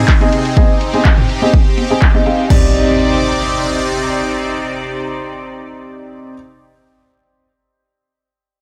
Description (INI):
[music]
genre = progressive house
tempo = 124 BPM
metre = 4/4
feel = straight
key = C minor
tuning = A4 = 440 Hz
[part]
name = supersaw pad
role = sustained chords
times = 0.0-6.3 s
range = C3 to D5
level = -21 LUFS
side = equal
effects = phaser, sidechain pumping
[part]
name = deep house drum kit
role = drums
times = 0.1-2.6 s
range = crash cymbal, handclaps, hi-hat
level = -25 LUFS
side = equal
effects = overdrive, low-pass filter on hats, low-pass filter on snare, low-pass filter on cymbals
[part]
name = electronic kick drum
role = drums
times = 0.1-2.6 s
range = none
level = -14 LUFS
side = equal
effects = overdrive
[part]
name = clear baby grand piano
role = stabs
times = 0.2-6.3 s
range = C4 to Ab5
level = -21 LUFS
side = equal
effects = sidechain pumping, low-pass filter, dub echo
[part]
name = electronic congas and toms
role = percussion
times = 0.2-2.2 s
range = none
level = -24 LUFS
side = equal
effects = sidechain pumping on perc, sidechain pumping on toms
[part]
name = impact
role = sound effects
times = 2.5-6.4 s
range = none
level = -24 LUFS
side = equal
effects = none
[sound]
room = light reverb, digital ambience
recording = none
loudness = -14 LUFS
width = mono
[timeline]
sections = 0.0-2.5 A section; 2.5-6.4 B section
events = filter sweep on grand piano 0.0-2.5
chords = 0.0 Ab/C; 2.5 Cmadd9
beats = 0.08 | 0.57 1.05 1.53 2.02 | 2.50 2.99 3.47 3.96 | 4.44 4.92 5.41 5.89